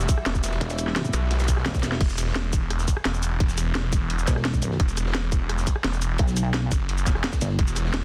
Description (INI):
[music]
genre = dark technical drum and bass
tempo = 172 BPM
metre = 4/4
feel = straight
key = E minor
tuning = A4 = 440 Hz
[part]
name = rich chamber string section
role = sustained chords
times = 0.0-2.0 s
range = E3 to E5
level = -38 LUFS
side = equal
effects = sidechain pumping
[part]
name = snarling distorted saw bass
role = bass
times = 0.0-8.0 s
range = E1 to B1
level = -28 LUFS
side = equal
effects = distortion, tube saturation, sidechain pumping
[part]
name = crunchy breakbeat drum kit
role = drums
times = 0.0-8.0 s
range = ride cymbal, snare drum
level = -41 LUFS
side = equal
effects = none
[part]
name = drum and bass drum kit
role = drums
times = 0.0-8.0 s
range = crash cymbal, hi-hat, rim click, shaker, snare drum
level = -32 LUFS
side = equal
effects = none
[part]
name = electronic kick drum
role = drums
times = 0.1-7.7 s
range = none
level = -25 LUFS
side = equal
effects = none
[part]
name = pulsing pluck wobble bass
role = bass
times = 0.6-2.0, 4.3-7.6 s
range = E1 to B1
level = -27 LUFS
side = equal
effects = chorus, tube saturation
[sound]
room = studio reverb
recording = dense, heavily limited modern master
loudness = -24 LUFS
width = mono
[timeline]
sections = 0.0-2.0 A section; 2.0-8.0 A section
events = drop 0.0-2.0, 2.0-8.0; drum fill 1.8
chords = 0.0 Emadd9; 2.0 N.C.